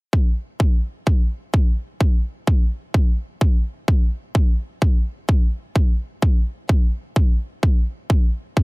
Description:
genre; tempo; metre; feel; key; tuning
EDM; 128 BPM; 4/4; straight; none; none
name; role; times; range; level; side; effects
electronic kick drum; drums; 0.1-8.6 s; none; -16 LUFS; equal; overdrive
room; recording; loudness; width
little or no reverb; none; -18 LUFS; side -35 dB against mid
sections
0.1-8.6 A section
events
none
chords
none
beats
| 0.13 0.60 1.07 1.54 | 2.01 2.47 2.94 3.41 | 3.88 4.35 4.82 5.29 | 5.76 6.22 6.69 7.16 | 7.63 8.10 8.57

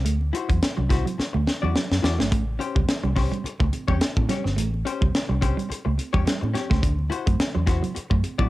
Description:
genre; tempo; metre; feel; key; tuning
funk; 106 BPM; 4/4; swing 56% on 16ths; unclear; A4 = 438 Hz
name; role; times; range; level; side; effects
clean electric guitar; riff; 0.0-8.5 s; F#3 to D4; -30 LUFS; right 6 dB; wide subtle chorus, cassette tape
vintage muted fingered electric bass; bass; 0.0-8.5 s; G1 to A2; -25 LUFS; equal; none
tight funk drum kit; drums; 0.1-8.5 s; hi-hat, kick drum, snare drum; -24 LUFS; equal; cassette tape
congas; percussion; 0.2-8.5 s; none; -37 LUFS; right 7 dB; none
vintage hollow-body jazz guitar; accompaniment; 0.3-8.5 s; C#4 to D5; -31 LUFS; left 6 dB; cassette tape
room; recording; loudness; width
studio ambience; home recording on cassette; -21 LUFS; side -17 dB against mid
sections
0.0-8.5 A section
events
drum fill 1.2-2.3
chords
0.0 D9; 2.3 A7#9; 6.8 D9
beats
| 0.05 0.62 1.18 1.75 | 2.31 2.88 3.44 4.01 | 4.58 5.14 5.70 6.27 | 6.83 7.39 7.96

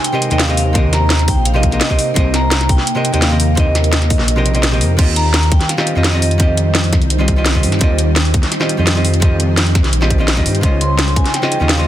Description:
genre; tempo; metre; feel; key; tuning
liquid drum and bass; 170 BPM; 4/4; straight; unclear; A4 = 440 Hz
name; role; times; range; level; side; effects
vibraphone with medium hard mallets; melody; 0.0-6.9, 10.8-11.9 s; Eb5 to C6; -22 LUFS; equal; digital delay
archtop guitar, miked and amplified; accompaniment; 0.0-11.9 s; C3 to Eb5; -19 LUFS; equal; dub echo
ethereal airy pad; sustained chords; 0.0-11.9 s; F3 to C5; -24 LUFS; equal; ensemble chorus, built-in reverb, tremolo, sidechain pumping
drum and bass drum kit; drums; 0.0-11.8 s; crash cymbal, hi-hat, snare drum; -18 LUFS; equal; none
dark detuned saw bass; bass; 0.3-11.9 s; Bb1 to G2; -15 LUFS; equal; tube saturation
electronic kick drum; drums; 0.8-11.2 s; none; -14 LUFS; equal; none
room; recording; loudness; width
digital ambience; dense, heavily limited modern master; -12 LUFS; side -12 dB against mid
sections
0.0-5.0 A section; 5.0-11.9 A section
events
drop 0.0-5.0, 5.0-11.9; kick drops out 4.3-5.0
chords
0.0 Cm7; 10.6 Dbmaj9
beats
0.05 0.40 | 0.75 1.10 1.46 1.81 | 2.16 2.52 2.87 3.22 | 3.58 3.93 4.28 4.63 | 4.99 5.34 5.69 6.05 | 6.40 6.75 7.11 7.46 | 7.81 8.16 8.52 8.87 | 9.22 9.58 9.93 10.28 | 10.63 10.99 11.34 11.69

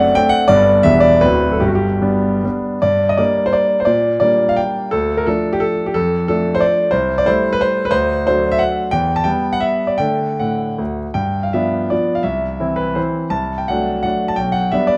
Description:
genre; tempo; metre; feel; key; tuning
classical, romantic triple-time dance for piano with dotted rhythms; 138-194 BPM; 3/4; rubato; G minor, G major from 6.9 s; A4 = 440 Hz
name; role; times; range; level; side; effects
bright concert grand piano; solo; 0.0-15.0 s; D1 to A5; -16 LUFS; equal; none
room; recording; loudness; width
moderate recital hall reverb, RT60 1.6 s; dark, warm production; -17 LUFS; mono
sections
0.0-2.8 A section; 2.8-11.2 B section; 11.2-15.0 C section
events
none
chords
0.5 G; 0.8 Em7; 1.2 D7; 1.6 G; 2.8 Gm; 3.9 Gm/Bb; 4.9 Dm; 5.9 Dm/F; 6.9 Am7/C; 7.9 D7; 8.9 Em; 10.0 D; 11.2 G7; 12.3 C; 13.3 D7/C; 14.4 G/B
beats
0.13 | 0.47 0.82 1.21 | 1.61 2.03 2.45 | 2.83 3.19 3.54 | 3.87 4.22 4.58 | 4.92 5.25 5.60 | 5.94 6.27 6.61 | 6.92 7.26 7.60 | 7.92 8.25 8.60 | 8.92 9.27 9.63 | 10.00 10.40 10.80 | 11.16 11.54 11.91 | 12.26 12.61 12.97 | 13.31 13.68 14.04 | 14.37 14.71

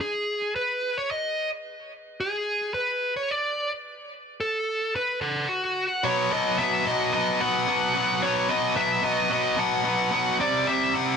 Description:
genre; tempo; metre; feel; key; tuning
rock; 110 BPM; 4/4; straight; unclear; A4 = 440 Hz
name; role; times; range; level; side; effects
dark smooth lead guitar; melody; 0.0-11.2 s; F#4 to F#5; -25 LUFS; equal; overdrive, tape echo
high-gain distorted guitar; riff; 6.0-11.2 s; B2 to C4; -24 LUFS; left 1 dB; distortion
room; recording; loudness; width
light reverb, digital ambience; dense, heavily limited modern master; -23 LUFS; side -6 dB against mid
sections
0.0-6.0 A section; 6.0-11.2 B section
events
none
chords
0.0 N.C.; 6.0 B5; 10.4 C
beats
0.00 0.55 1.10 | 1.65 2.20 2.75 3.30 | 3.85 4.39 4.94 5.49 | 6.03 6.58 7.12 7.67 | 8.21 8.76 9.30 9.84 | 10.39 10.93

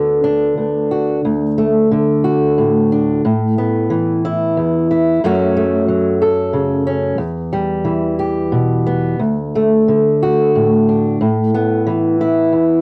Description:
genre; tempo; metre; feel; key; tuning
folk, solo fingerstyle acoustic guitar; 60 BPM (dotted quarters); 6/8; straight; D major; A4 = 440 Hz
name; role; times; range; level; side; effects
fingerpicked old ladder-braced acoustic guitar; solo; 0.0-12.8 s; D2 to A4; -16 LUFS; equal; none
room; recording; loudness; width
light reverb; home recording on cassette; -16 LUFS; mono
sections
0.0-1.2 A section; 1.2-12.8 B section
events
none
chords
0.0 Bm/D; 1.2 D; 3.2 Asus2; 5.2 F#m; 7.2 Em; 9.2 D; 11.2 Asus2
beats
0.23 | 1.24 2.24 | 3.25 4.24 | 5.23 6.22 | 7.20 8.20 | 9.20 10.22 | 11.21 12.19

